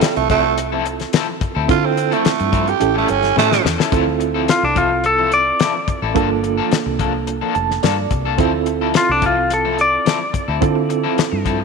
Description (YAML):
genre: straight-eighth soul blues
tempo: 108 BPM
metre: 4/4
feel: straight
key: D minor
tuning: A4 = 440 Hz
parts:
  - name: raspy tenor saxophone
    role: second line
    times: 0.0-3.6 s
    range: G3 to G4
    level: -18 LUFS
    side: right 9 dB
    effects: none
  - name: reed electric piano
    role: accompaniment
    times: 0.0-11.6 s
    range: Bb3 to A5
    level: -21 LUFS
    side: right 12 dB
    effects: fast tremolo
  - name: electric guitar at the edge of break-up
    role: stabs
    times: 0.0-11.6 s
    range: F3 to A4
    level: -24 LUFS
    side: left 12 dB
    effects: harmonic tremolo
  - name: damped 70s drum kit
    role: drums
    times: 0.0-11.6 s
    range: hi-hat, kick drum, snare drum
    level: -20 LUFS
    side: left 6 dB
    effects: none
  - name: fingered electric bass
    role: bass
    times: 0.2-11.6 s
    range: F1 to D3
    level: -24 LUFS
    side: left 1 dB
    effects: none
  - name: clean lap steel guitar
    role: melody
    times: 4.5-11.4 s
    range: D4 to D5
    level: -17 LUFS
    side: left 3 dB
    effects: none
room: moderate echo chamber reverb, RT60 2.3 s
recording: 1960s-style stereo with parts hard left and right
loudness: -15 LUFS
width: side -4 dB against mid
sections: 0.0-3.9 A section; 3.9-11.6 B section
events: tenor saxophone solo 0.0-3.9; drum fill 3.4-3.9; reed electric piano fill 7.3-8.4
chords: 0.0 Dm9; 2.8 A7; 3.9 Dm9; 6.2 Gm9; 8.4 Dm9